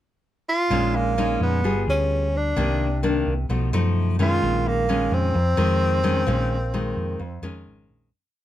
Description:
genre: bossa nova.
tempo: 129 BPM.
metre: 4/4.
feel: straight.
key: Bb minor.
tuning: A4 = 439 Hz.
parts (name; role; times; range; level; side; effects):
warm tenor saxophone; melody; 0.5-7.7 s; Bb3 to F4; -24 LUFS; right 1 dB; none.
nylon-string guitar; accompaniment; 0.7-8.1 s; F2 to Ab4; -24 LUFS; left 3 dB; none.
hollow-body short-scale fingered electric bass; bass; 0.7-8.1 s; G1 to F#2; -24 LUFS; right 1 dB; none.
room: light reverb.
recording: none.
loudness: -20 LUFS.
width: side -12 dB against mid.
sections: 0.0-0.7 pickup bar; 0.7-8.1 A section.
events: fade-out 6.3-8.1.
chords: 0.0 N.C.; 0.7 Bbm7; 1.6 G7b9; 2.6 Cm9; 3.5 B7#11; 4.4 Bbm11.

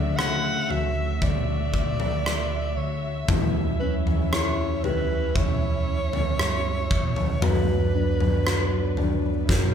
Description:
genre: pop ballad.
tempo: 58 BPM.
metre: 4/4.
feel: straight.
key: B minor.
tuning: A4 = 440 Hz.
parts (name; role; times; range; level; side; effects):
breathy alto saxophone; melody; 0.0-9.7 s; A#4 to F#5; -30 LUFS; equal; none.
felt-muted upright piano; accompaniment; 0.0-9.7 s; C#3 to G4; -31 LUFS; left 4 dB; none.
warm studio string section; sustained chords; 0.0-9.7 s; F#3 to E5; -34 LUFS; left 2 dB; none.
hollow-body short-scale fingered electric bass; bass; 0.0-9.7 s; D2 to G2; -28 LUFS; equal; none.
huge arena drum kit; drums; 0.2-9.7 s; kick drum, rim click, snare drum, toms; -25 LUFS; right 1 dB; none.
room: light reverb.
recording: band playing live in one room.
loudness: -22 LUFS.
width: side -8 dB against mid.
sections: 0.0-9.7 A section.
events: drum fill 9.5.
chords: 0.0 Dmaj7; 3.3 C#dim/E; 7.4 Bm/F#.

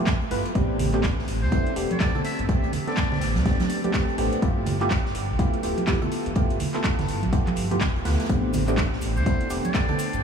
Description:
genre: deep house.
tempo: 124 BPM.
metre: 4/4.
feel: swing 60% on 16ths.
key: A minor.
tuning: A4 = 441 Hz.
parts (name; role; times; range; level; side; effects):
percussive organ stab; stabs; 0.0-10.2 s; A3 to B4; -26 LUFS; equal; chorus, phaser, sidechain pumping, diffuse ambient delay.
deep house drum kit; drums; 0.1-10.2 s; handclaps, hi-hat; -33 LUFS; equal; overdrive.
electronic kick drum; drums; 0.1-9.9 s; none; -24 LUFS; equal; overdrive.
open jazz drum kit; drums; 0.1-10.1 s; hi-hat, snare drum; -41 LUFS; right 2 dB; high-pass filter on hats, high-pass filter on snare, high-pass filter on room.
sub bass with octave; bass; 0.3-10.2 s; D1 to D2; -27 LUFS; equal; tube saturation, sidechain pumping.
congas; percussion; 0.8-10.0 s; none; -31 LUFS; right 4 dB; sidechain pumping on perc.
trumpet with metal mute; melody; 1.4-3.4, 9.2-10.2 s; C5 to E5; -35 LUFS; left 1 dB; diffuse ambient delay.
cabasa; percussion; 8.3-10.2 s; none; -45 LUFS; equal; none.
room: moderate huge ambient reverb, RT60 9.2 s.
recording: dreamy mix soaked in reverb, studio reverb.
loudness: -21 LUFS.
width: side -7 dB against mid.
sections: 0.0-10.2 A section.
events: none.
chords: 0.0 G13; 0.6 Am11; 4.4 G13; 8.3 Am11.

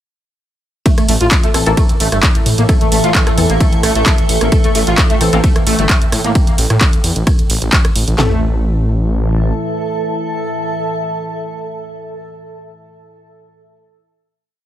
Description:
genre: driving peak-time techno.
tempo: 131 BPM.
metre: 4/4.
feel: straight.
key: A minor.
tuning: A4 = 440 Hz.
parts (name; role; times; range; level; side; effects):
overdriven synth lead; riff; 0.9-8.4 s; A3 to F4; -20 LUFS; equal; tube saturation, ensemble chorus, sidechain pumping, dub echo.
deep dark ambient pad; drone; 1.9-11.4 s; A2 to E3; -24 LUFS; right 1 dB; chorus, built-in reverb, sidechain pumping.
punchy analog drum machine; drums; 0.9-8.2 s; handclaps, hi-hat, ride cymbal, rim click; -18 LUFS; right 1 dB; sidechain pumping on hats, sidechain pumping on cymbals.
techno drum kit; drums; 0.9-8.3 s; handclaps, kick drum, snare drum, toms; -14 LUFS; equal; overdrive.
granular cloud pad; texture; 2.1-11.6 s; A4 to A5; -22 LUFS; right 1 dB; built-in reverb, sidechain pumping.
detuned saw bass; bass; 1.1-9.5 s; G1 to A2; -15 LUFS; equal; sidechain pumping.
filtered dub chord stab; stabs; 1.5-5.4, 8.2-11.4 s; E3 to A4; -21 LUFS; left 3 dB; ensemble chorus, sidechain pumping, dub echo.
room: light reverb, digital ambience.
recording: none.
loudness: -11 LUFS.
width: side -12 dB against mid.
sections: 0.9-8.2 drop; 8.2-11.8 final chord.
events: drop 0.9-8.2.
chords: 0.9 A5; 8.2 Am.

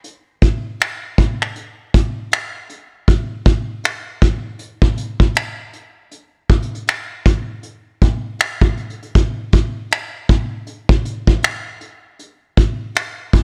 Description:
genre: R&B.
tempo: 79 BPM.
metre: 4/4.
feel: swing 58% on 16ths.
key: none.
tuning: none.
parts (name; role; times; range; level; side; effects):
vintage brush drum kit; drums; 0.0-13.4 s; finger snaps, hi-hat, kick drum; -18 LUFS; equal; none.
room: little or no reverb.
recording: dry, gritty hardware recording.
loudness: -18 LUFS.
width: mono.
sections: 0.0-13.4 A section.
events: none.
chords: none.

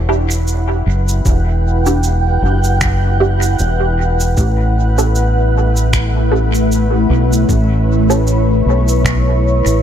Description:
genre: ambient dub.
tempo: 77 BPM.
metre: 4/4.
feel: swing 57% on 16ths.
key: unclear.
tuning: A4 = 437 Hz.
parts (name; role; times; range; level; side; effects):
granular cloud pad; sustained chords; 0.0-9.8 s; A3 to G5; -18 LUFS; equal; built-in reverb.
fingered electric bass; bass; 0.0-9.8 s; E1 to B1; -14 LUFS; equal; none.
filtered dub chord stab; stabs; 0.1-8.3 s; C#4 to A4; -21 LUFS; right 2 dB; phaser, ensemble chorus, dub echo.
electronic cabasa and finger snaps; drums; 0.3-9.8 s; none; -24 LUFS; right 2 dB; dub echo.
electronic kick drum; drums; 1.3-9.2 s; none; -17 LUFS; equal; none.
room: little or no reverb.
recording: none.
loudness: -12 LUFS.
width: side -9 dB against mid.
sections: 0.0-9.8 A section.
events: none.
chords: 0.0 Em7; 4.4 A7.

